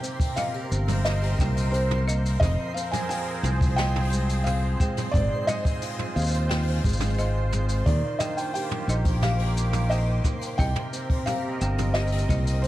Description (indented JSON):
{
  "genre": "folktronica",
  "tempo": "88 BPM",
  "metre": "4/4",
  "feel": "straight",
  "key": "unclear",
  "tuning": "A4 = 438 Hz",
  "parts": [
    { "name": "felt-muted upright piano", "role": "melody", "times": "0.0-12.7 s", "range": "C5 to Ab5", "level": "-31 LUFS", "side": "equal", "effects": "none" },
    { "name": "musette accordion", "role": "sustained chords", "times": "0.0-12.7 s", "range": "C3 to D6", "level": "-35 LUFS", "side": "right 1 dB", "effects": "none" },
    { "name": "fingerpicked steel-string acoustic guitar", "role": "arpeggios", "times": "0.0-12.7 s", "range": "F2 to G4", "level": "-34 LUFS", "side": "right 1 dB", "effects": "none" },
    { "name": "jazz brush drum kit", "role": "drums", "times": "0.0-12.7 s", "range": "hi-hat, shaker, snare drum, toms", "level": "-33 LUFS", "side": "equal", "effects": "none" },
    { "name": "twinkling granular texture", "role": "texture", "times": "0.0-12.7 s", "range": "C5 to C6", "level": "-40 LUFS", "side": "right 1 dB", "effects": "built-in reverb" },
    { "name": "kick drum", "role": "drums", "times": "0.2-12.4 s", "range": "none", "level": "-26 LUFS", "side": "equal", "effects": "none" },
    { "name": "folk marimba with hard mallets", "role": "second line", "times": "0.4-12.6 s", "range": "Eb5 to G5", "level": "-40 LUFS", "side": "right 1 dB", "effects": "tape echo" },
    { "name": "modern bright fingered electric bass", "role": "bass", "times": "0.7-12.7 s", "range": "F1 to Eb2", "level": "-24 LUFS", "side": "equal", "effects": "none" }
  ],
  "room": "small room ambience",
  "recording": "vinyl crackle",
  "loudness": "-22 LUFS",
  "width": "side -15 dB against mid",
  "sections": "0.0-12.7 A section",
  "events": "none",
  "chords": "0.0 Cm7; 2.4 Fm7; 5.1 Ab6; 7.9 Ebmaj7; 10.6 Cm7"
}